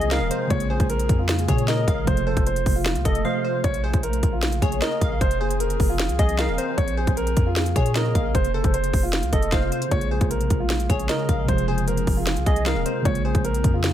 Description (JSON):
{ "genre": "hip hop, trap", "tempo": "153 BPM", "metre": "4/4", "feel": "half-time", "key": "Bb minor", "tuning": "A4 = 440 Hz", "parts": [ { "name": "dark baby grand piano", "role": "melody", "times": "0.0-13.9 s", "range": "F4 to Db5", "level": "-27 LUFS", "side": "right 1 dB", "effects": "ping-pong delay" }, { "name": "glassy wavetable pluck", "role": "second line", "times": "0.0-13.4 s", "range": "C5 to F5", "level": "-30 LUFS", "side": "left 2 dB", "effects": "chorus, ping-pong delay" }, { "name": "muted felt-like synth keys", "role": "accompaniment", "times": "0.0-3.7, 9.9-13.9 s", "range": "C3 to A4", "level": "-29 LUFS", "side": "right 1 dB", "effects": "chorus" }, { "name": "ethereal airy pad", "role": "sustained chords", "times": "0.0-13.9 s", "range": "C3 to Ab4", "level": "-30 LUFS", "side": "equal", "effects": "ensemble chorus, built-in reverb" }, { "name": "warm 808-style bass", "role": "bass", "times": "0.0-13.9 s", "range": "Eb1 to Bb2", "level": "-25 LUFS", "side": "equal", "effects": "none" }, { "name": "trap drum kit", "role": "drums", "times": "0.0-13.9 s", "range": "hi-hat, kick drum, snare drum", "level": "-23 LUFS", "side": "equal", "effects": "none" } ], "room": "digital ambience", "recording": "none", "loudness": "-19 LUFS", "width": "side -11 dB against mid", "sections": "0.0-3.6 A section; 3.6-13.9 A section", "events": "drums muted 3.2-3.6", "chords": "0.0 Fm; 0.5 Bbm7; 2.1 F; 3.6 Bbm7; 5.2 Fm; 6.8 Bbm7; 8.3 F; 9.9 Bbm7; 11.5 Fm; 13.1 Bbm7", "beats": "0.11 | 0.50 0.90 1.29 1.68 | 2.07 2.46 2.86 3.25 | 3.64 4.03 4.43 4.82 | 5.21 5.60 5.99 6.39 | 6.78 7.17 7.56 7.96 | 8.35 8.74 9.13 9.52 | 9.92 10.31 10.70 11.09 | 11.48 11.88 12.27 12.66 | 13.05 13.45 13.84" }